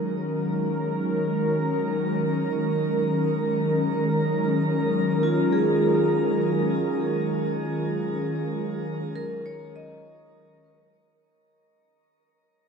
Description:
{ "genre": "ambient", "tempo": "free time", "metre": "none", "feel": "none", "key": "Eb minor", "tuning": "A4 = 440 Hz", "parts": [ { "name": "warm analog pad", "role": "sustained chords", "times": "0.0-11.2 s", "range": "Eb3 to Bb4", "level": "-23 LUFS", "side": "equal", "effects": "chorus" }, { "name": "vibraphone with medium hard mallets", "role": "arpeggios", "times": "0.0-12.1 s", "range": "F4 to Eb5", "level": "-28 LUFS", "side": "right 1 dB", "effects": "tape echo" } ], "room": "wet shimmer reverb, RT60 8.2 s", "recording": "none", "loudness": "-22 LUFS", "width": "side -6 dB against mid", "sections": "0.0-11.1 A section", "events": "fade-in on analog synth pad 0.0-11.1; fade-in on vibraphone 0.0-11.1; fade-out 5.9-11.1", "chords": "0.0 Ebm7" }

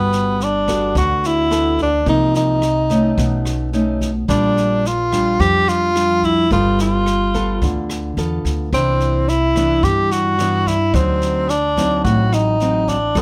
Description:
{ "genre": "bossa nova", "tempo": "108 BPM", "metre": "4/4", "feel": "straight", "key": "unclear", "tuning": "A4 = 440 Hz", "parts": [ { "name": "breathy tenor saxophone", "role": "melody", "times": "0.0-13.2 s", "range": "B3 to G4", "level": "-20 LUFS", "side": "equal", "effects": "none" }, { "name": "nylon-string guitar", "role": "accompaniment", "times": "0.0-13.2 s", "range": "G2 to A4", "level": "-23 LUFS", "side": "equal", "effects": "none" }, { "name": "upright bass", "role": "bass", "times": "0.0-13.2 s", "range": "G1 to G2", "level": "-24 LUFS", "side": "equal", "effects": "none" }, { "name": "jazz brush drum kit", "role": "drums", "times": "0.1-13.2 s", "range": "kick drum, rim click, snare drum", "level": "-29 LUFS", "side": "equal", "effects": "none" } ], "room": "moderate studio reverb, RT60 0.6 s", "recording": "none", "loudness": "-17 LUFS", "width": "mono", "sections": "0.0-13.2 A section", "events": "none", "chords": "0.0 Gmaj9; 2.1 Cm7; 3.2 B9; 4.3 Bb6; 6.5 G9; 8.7 Cmaj9; 10.9 D7b9" }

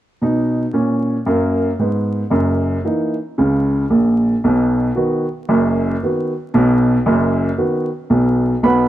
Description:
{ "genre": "jazz, stride piano", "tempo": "114 BPM", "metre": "4/4", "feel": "swing 65% on 8ths", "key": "B major", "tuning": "A4 = 440 Hz", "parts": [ { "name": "warm upright piano", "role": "solo", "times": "0.2-8.9 s", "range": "F#1 to B5", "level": "-14 LUFS", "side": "right 1 dB", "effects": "none" } ], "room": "light reverb, small room ambience", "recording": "dry, close 1970s-style studio recording, vinyl crackle", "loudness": "-15 LUFS", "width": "side -13 dB against mid", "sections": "0.2-8.6 A section", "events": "none", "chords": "0.2 B; 2.3 F#6; 4.4 B" }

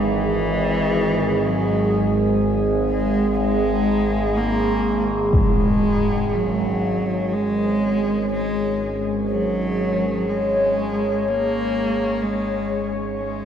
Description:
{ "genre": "dark ambient drone", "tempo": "61 BPM", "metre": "4/4", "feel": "straight", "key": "unclear", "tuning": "A4 = 438 Hz", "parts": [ { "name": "dark cello", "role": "melody", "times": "0.0-13.4 s", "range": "E3 to A#3", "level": "-24 LUFS", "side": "equal", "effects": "shimmer reverb, analog delay" }, { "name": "dark analog pad", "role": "sustained chords", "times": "0.0-13.4 s", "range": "G#3 to D#5", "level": "-22 LUFS", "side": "right 1 dB", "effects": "chorus, phaser, shimmer reverb" }, { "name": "overtone-sweeping drone", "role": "drone", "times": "0.0-13.4 s", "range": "G#1", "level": "-25 LUFS", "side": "equal", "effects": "chorus, built-in reverb, phaser" }, { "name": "impact", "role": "percussion", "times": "5.3-5.5 s", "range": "none", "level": "-21 LUFS", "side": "left 1 dB", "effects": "low-pass filter on sfx" } ], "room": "wet plate reverb, RT60 3.0 s", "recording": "dreamy mix soaked in reverb", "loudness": "-18 LUFS", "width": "side -8 dB against mid", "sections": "0.0-13.4 A section", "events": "fade-out 10.6-13.4", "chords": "0.0 G#5" }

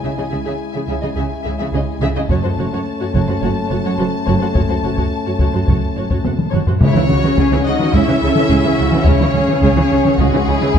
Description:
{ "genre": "cinematic, epic orchestral film score", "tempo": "106 BPM", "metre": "4/4", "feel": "straight", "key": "C# minor", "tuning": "A4 = 439 Hz", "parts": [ { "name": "rich symphonic violin section", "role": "melody", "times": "0.0-10.8 s", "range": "G#4 to A5", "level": "-24 LUFS", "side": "left 5 dB", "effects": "none" }, { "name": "warm symphonic violin section", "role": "second line", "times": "0.0-10.8 s", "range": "E4 to E5", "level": "-26 LUFS", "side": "left 3 dB", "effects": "none" }, { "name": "warm symphonic viola section", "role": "accompaniment", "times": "0.0-10.8 s", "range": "C#3 to G#4", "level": "-23 LUFS", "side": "right 2 dB", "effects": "none" }, { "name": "mellow French horn section", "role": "sustained chords", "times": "0.0-10.8 s", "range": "G#3 to E4", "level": "-22 LUFS", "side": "left 3 dB", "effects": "none" }, { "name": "rich symphonic cello section", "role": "bass", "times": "0.0-10.8 s", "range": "F#2 to C#3", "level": "-22 LUFS", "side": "right 2 dB", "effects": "none" }, { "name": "warm symphonic double bass section", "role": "bass", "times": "0.0-10.8 s", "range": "F#1 to C#2", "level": "-21 LUFS", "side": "right 3 dB", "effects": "none" }, { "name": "taiko ensemble", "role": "drums", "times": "2.3-10.8 s", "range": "none", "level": "-18 LUFS", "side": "equal", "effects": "none" }, { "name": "bright trombone section", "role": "sustained chords", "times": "6.8-10.8 s", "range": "C#3 to C#4", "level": "-23 LUFS", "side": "right 2 dB", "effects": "none" }, { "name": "timpani", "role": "percussion", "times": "6.8-7.6 s", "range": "C#3", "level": "-21 LUFS", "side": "left 1 dB", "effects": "none" } ], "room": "moderate scoring stage reverb, RT60 1.5 s", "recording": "none", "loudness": "-14 LUFS", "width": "side -8 dB against mid", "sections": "0.0-6.8 A section; 6.8-10.8 B section", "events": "drum fill 6.2-6.8", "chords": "0.0 C#m; 2.3 F#m; 6.8 C#m" }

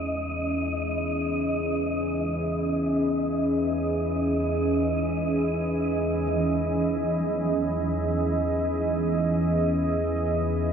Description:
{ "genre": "dark ambient drone", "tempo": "free time", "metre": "none", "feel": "none", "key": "unclear", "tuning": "A4 = 441 Hz", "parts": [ { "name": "deep dark ambient pad", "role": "sustained chords", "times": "0.0-10.7 s", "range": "C#4 to D#5", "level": "-26 LUFS", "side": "right 1 dB", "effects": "chorus, built-in reverb" }, { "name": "gamelan-type bronze metallophone", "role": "arpeggios", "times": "0.0-10.7 s", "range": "E3 to G#3", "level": "-39 LUFS", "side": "left 1 dB", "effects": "none" }, { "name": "organ-like drone", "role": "drone", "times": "0.0-10.7 s", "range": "E2 to E3", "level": "-29 LUFS", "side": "equal", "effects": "ensemble chorus, built-in reverb" }, { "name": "wind-like tuned noise texture", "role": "texture", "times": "0.0-10.7 s", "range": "D#5", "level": "-34 LUFS", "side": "left 1 dB", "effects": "built-in reverb" } ], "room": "wet cathedral reverb, RT60 5.5 s", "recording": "none", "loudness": "-23 LUFS", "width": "side -7 dB against mid", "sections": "0.0-10.7 A section", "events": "fade-in on synth drone 0.0-10.7; fade-out on synth texture 0.0-10.7", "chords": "0.0 C#m" }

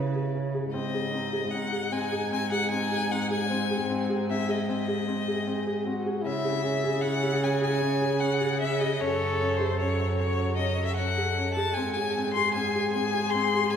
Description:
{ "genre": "contemporary instrumental, chamber music in an uneven meter", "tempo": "152 BPM", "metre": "7/4", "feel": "straight", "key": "unclear", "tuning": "A4 = 439 Hz", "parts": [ { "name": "clear violin", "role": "melody", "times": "0.0-13.8 s", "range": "B4 to B#5", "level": "-30 LUFS", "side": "left 4 dB", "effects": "none" }, { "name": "clear French horn", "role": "second line", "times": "0.0-13.8 s", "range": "B#3 to A4", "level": "-32 LUFS", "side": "left 2 dB", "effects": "none" }, { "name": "felt-muted upright piano", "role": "arpeggios", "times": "0.0-13.8 s", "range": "B#3 to A4", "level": "-31 LUFS", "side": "equal", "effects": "none" }, { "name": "warm cello", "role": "bass", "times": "0.0-13.8 s", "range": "F#2 to C#3", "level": "-30 LUFS", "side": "right 2 dB", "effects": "none" } ], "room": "wet cathedral reverb, RT60 5.4 s", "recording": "recorded in a church or concert hall", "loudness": "-25 LUFS", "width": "side -8 dB against mid", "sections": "0.7-13.8 A section", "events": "none", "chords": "0.0 C#5; 0.7 G#; 6.2 C#m; 9.0 F#m; 11.8 G#" }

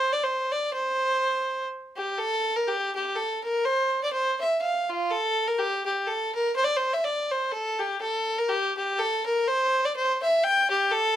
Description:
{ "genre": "celtic folk", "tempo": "124 BPM", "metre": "3/4", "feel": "swing 57% on 8ths", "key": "C mixolydian", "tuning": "A4 = 440 Hz", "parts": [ { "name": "warm fiddle", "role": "solo", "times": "0.0-11.2 s", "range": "F4 to G5", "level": "-23 LUFS", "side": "equal", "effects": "none" } ], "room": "moderate studio ambience, RT60 0.4 s", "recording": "none", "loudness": "-24 LUFS", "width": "side -11 dB against mid", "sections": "0.0-2.2 A section; 2.2-11.2 B section", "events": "none", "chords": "none" }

